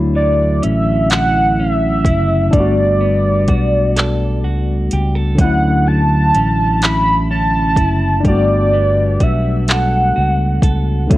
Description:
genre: slow six-eight R&B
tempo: 42 BPM (dotted quarters)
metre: 6/8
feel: straight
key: unclear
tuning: A4 = 440 Hz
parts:
  - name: clean electric guitar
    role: second line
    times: 0.0-11.2 s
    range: D3 to A4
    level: -24 LUFS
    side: right 3 dB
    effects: none
  - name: mellow tine electric piano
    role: accompaniment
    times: 0.0-11.2 s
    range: D3 to F#4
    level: -19 LUFS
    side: left 2 dB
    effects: medium stereo tremolo
  - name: fingered electric bass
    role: bass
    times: 0.0-11.2 s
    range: F#1 to D2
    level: -16 LUFS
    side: equal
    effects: none
  - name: warm velvety synth lead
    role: melody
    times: 0.2-10.8 s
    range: D5 to B5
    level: -17 LUFS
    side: right 1 dB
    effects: chorus
  - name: smooth R&B drum kit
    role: drums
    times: 0.6-11.2 s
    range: handclaps, hi-hat, kick drum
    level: -15 LUFS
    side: equal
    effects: overdrive
room: light reverb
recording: worn, warbling old tape, cassette tape, warbly pitch drift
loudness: -12 LUFS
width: side -16 dB against mid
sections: 0.0-11.2 A section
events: none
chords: 0.0 Dmaj9; 2.5 Gmaj9; 5.4 Dmaj9; 8.2 Gmaj9

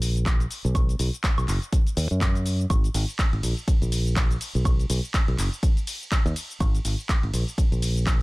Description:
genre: piano house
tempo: 123 BPM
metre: 4/4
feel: swing 58% on 16ths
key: unclear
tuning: A4 = 442 Hz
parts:
  - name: fingered electric bass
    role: bass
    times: 0.0-8.2 s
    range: F#1 to F#2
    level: -24 LUFS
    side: equal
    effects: sidechain pumping
  - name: punchy analog drum machine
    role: drums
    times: 0.0-8.2 s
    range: handclaps, hi-hat, ride cymbal, shaker, woodblock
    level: -31 LUFS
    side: equal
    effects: none
  - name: electronic kick drum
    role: drums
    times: 0.3-8.2 s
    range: none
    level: -22 LUFS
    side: equal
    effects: none
room: little or no reverb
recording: none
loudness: -22 LUFS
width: side -23 dB against mid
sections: 0.0-8.2 A section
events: none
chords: none

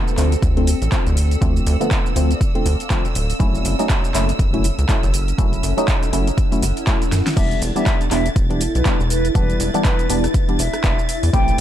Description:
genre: deep house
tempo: 121 BPM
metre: 4/4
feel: swing 58% on 16ths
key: unclear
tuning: A4 = 440 Hz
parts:
  - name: percussive organ stab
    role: stabs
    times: 0.0-11.6 s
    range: D3 to G4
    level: -23 LUFS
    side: equal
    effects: chorus, phaser, sidechain pumping, digital delay
  - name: granular cloud pad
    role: texture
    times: 0.0-11.6 s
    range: C4 to F#5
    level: -27 LUFS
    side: equal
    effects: built-in reverb, sidechain pumping
  - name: warm studio violin section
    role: texture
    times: 0.0-11.6 s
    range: E6 to A6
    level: -33 LUFS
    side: right 3 dB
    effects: sidechain pumping
  - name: deep house drum kit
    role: drums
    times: 0.1-11.6 s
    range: crash cymbal, handclaps, hi-hat, rim click, shaker, snare drum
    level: -26 LUFS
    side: right 1 dB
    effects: overdrive, studio ambience
  - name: rubbery square bass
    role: bass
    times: 0.2-11.6 s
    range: D1 to F#2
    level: -19 LUFS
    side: equal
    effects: tube saturation, sidechain pumping
  - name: electronic kick drum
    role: drums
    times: 0.4-11.4 s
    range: none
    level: -20 LUFS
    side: equal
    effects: overdrive, studio ambience
  - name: hollow silver concert flute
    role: melody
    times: 7.4-11.6 s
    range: B4 to G5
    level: -27 LUFS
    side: left 3 dB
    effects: ping-pong delay
room: digital ambience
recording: dark, warm production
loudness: -16 LUFS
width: side -11 dB against mid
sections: 0.0-7.4 A section; 7.4-11.6 B section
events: drum fill 7.1; drop 7.4-11.6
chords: 0.0 Dm7; 3.4 F#m7; 7.4 Em7

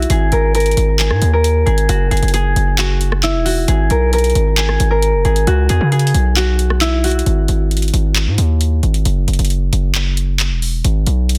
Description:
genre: hip hop, trap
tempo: 134 BPM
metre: 4/4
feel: half-time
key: G# minor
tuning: A4 = 441 Hz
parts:
  - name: concert harp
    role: melody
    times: 0.0-9.5 s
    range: E4 to A#4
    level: -20 LUFS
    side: equal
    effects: low-pass filter, digital delay
  - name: distorted 808-style bass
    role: bass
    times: 0.0-11.4 s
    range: E1 to C#3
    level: -17 LUFS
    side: equal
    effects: distortion
  - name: booming analog drum machine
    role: drums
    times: 0.0-11.4 s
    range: handclaps, hi-hat, rim click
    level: -23 LUFS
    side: equal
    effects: none
room: digital ambience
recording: dense, heavily limited modern master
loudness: -15 LUFS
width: mono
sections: 0.0-7.3 A section; 7.3-11.4 B section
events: none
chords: 0.1 G#sus2; 1.9 Eadd9; 3.7 G#sus2; 5.5 C#m7; 7.3 G#5; 9.1 Esus2; 10.8 F#sus4 (rootless)

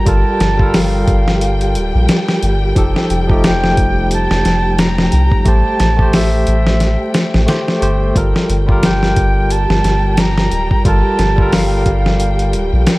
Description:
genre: trip hop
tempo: 89 BPM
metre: 4/4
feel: swing 58% on 16ths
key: G minor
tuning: A4 = 440 Hz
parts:
  - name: reedy jazz flute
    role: melody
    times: 0.0-12.9 s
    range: E5 to Bb5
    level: -20 LUFS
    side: right 1 dB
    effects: vintage 12-bit sampler grit, tape echo
  - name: barky tine electric piano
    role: accompaniment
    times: 0.0-13.0 s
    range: F3 to C5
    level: -19 LUFS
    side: equal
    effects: tremolo, tape echo
  - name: warm studio string section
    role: sustained chords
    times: 0.0-13.0 s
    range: G3 to G5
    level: -24 LUFS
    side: equal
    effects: none
  - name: soft dub sub bass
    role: bass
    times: 0.1-12.9 s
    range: D1 to C2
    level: -16 LUFS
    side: equal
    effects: none
  - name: dusty soul sampler-style drum kit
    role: drums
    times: 0.1-13.0 s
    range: hi-hat, kick drum, snare drum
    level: -15 LUFS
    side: equal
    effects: none
room: little or no reverb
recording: vinyl crackle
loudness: -11 LUFS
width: side -20 dB against mid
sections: 0.0-13.0 A section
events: none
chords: 0.0 Gm9; 2.8 F9; 5.5 Am7; 8.2 Gm9

